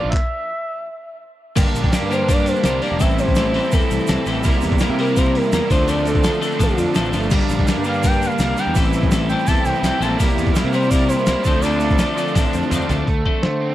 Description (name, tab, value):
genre	indie rock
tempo	167 BPM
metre	4/4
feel	straight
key	D minor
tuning	A4 = 440 Hz
part	expressive synth lead	melody	0.0-13.7 s	F4 to A5	-24 LUFS	equal	chorus
part	crunchy overdriven guitar	riff	0.0-13.7 s	E3 to G4	-24 LUFS	right 6 dB	analog chorus, tape echo
part	fuzz picked electric bass	bass	0.0-13.7 s	E1 to D3	-22 LUFS	equal	overdrive
part	boom bap sampler-style drum kit	drums	0.1-13.5 s	crash cymbal, handclaps, hi-hat, kick drum, snare drum, toms	-20 LUFS	equal	none
part	hollow soft pad	sustained chords	1.6-13.1 s	A4 to D6	-36 LUFS	equal	none
part	twelve-string electric guitar	riff	1.6-13.5 s	G2 to Bb4	-24 LUFS	left 8 dB	none
part	egg shaker	percussion	1.6-13.0 s	none	-37 LUFS	right 7 dB	none
room	little or no reverb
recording	dry, close 1970s-style studio recording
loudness	-16 LUFS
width	side -14 dB against mid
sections	0.0-1.6 A section; 1.6-13.1 B section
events	stop 0.1-1.6; drum fill 12.3-13.1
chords	0.1 N.C.; 1.6 Gm; 3.0 Am7; 4.4 C7; 5.7 Dm7; 7.3 Gm; 8.8 Am7; 10.2 C7; 11.4 Dm7; 13.1 F